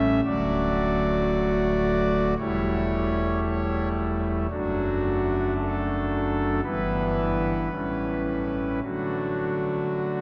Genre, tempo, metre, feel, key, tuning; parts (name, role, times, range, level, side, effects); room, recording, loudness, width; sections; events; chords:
classical, chorale-style piece for pipe organ; 56 BPM; 4/4; straight; D major; A4 = 440 Hz
pipe organ, foundations; solo; 0.0-10.2 s; D1 to E5; -25 LUFS; equal
wet cathedral reverb, RT60 5.4 s; -26 LUFS; mono
0.0-10.2 A section
0.2 D; 2.4 A7/E; 4.5 D/F#; 6.6 Em/G; 7.7 A7; 8.8 D